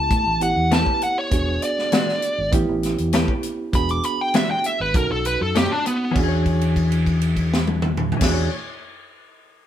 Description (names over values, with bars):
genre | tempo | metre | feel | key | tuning
straight-eighth soul blues | 99 BPM | 4/4 | straight | E mixolydian | A4 = 439 Hz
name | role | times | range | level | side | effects
smooth overdriven lead guitar | melody | 0.0-6.2 s | B3 to D6 | -21 LUFS | equal | none
reed electric piano | accompaniment | 0.0-8.5 s | B3 to A4 | -27 LUFS | right 4 dB | fast tremolo
fingered electric bass | bass | 0.0-8.5 s | E1 to A2 | -23 LUFS | equal | none
tight funk drum kit | drums | 0.1-8.4 s | crash cymbal, hi-hat, kick drum, snare drum, toms | -22 LUFS | equal | none
direct-recorded clean electric guitar | stabs | 0.7-8.6 s | B2 to C#5 | -26 LUFS | left 5 dB | spring reverb
room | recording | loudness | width
moderate studio reverb, RT60 0.6 s | band playing live in one room | -18 LUFS | side -10 dB against mid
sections
0.0-6.2 A section; 6.2-8.6 B section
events
lead electric guitar solo 0.0-6.2; held note 6.2-8.2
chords
0.0 A9; 1.3 E9; 2.5 A9; 3.7 E9; 5.0 B9; 6.2 E13